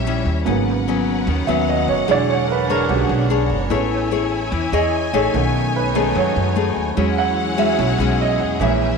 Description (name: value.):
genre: bossa nova.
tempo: 147 BPM.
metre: 4/4.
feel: straight.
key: unclear.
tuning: A4 = 439 Hz.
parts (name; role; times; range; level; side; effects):
nylon-string guitar; accompaniment; 0.0-9.0 s; G#2 to C#5; -21 LUFS; left 12 dB; none.
warm concert grand piano; accompaniment; 0.0-9.0 s; C#3 to F#5; -21 LUFS; right 12 dB; none.
warm symphonic string section; sustained chords; 0.0-9.0 s; C#4 to G#5; -26 LUFS; left 2 dB; none.
upright bass; bass; 0.0-9.0 s; E1 to F#2; -23 LUFS; equal; none.
room: light reverb, small room ambience.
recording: 1960s-style stereo with parts hard left and right.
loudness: -16 LUFS.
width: side -5 dB against mid.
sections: 0.5-9.0 A section.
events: grand piano solo 0.0-9.0.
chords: 0.5 G#m11; 2.1 E13; 3.7 Amaj7; 5.3 B13; 7.0 E69.